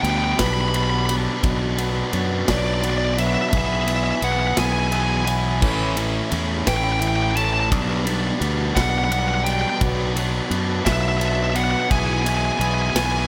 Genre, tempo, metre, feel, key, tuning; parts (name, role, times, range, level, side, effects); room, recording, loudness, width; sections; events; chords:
post-rock; 57 BPM (dotted quarters); 6/8; straight; A4 = 441 Hz
smooth overdriven lead guitar; melody; 0.0-13.3 s; D5 to B5; -26 LUFS; equal; digital delay
fuzz guitar; riff; 0.0-13.3 s; A2 to G#4; -26 LUFS; equal; distortion
fuzz fingered electric bass; bass; 0.0-13.3 s; A1 to F#2; -26 LUFS; equal; overdrive
big rock drum kit; drums; 0.0-13.1 s; crash cymbal, kick drum, ride cymbal, snare drum; -29 LUFS; equal
little or no reverb; -21 LUFS; mono
0.0-13.3 A section
0.0 G/B; 1.4 Bm; 3.5 E/B; 5.6 A7; 7.7 Gmaj7/B; 9.8 Bm; 11.9 E/B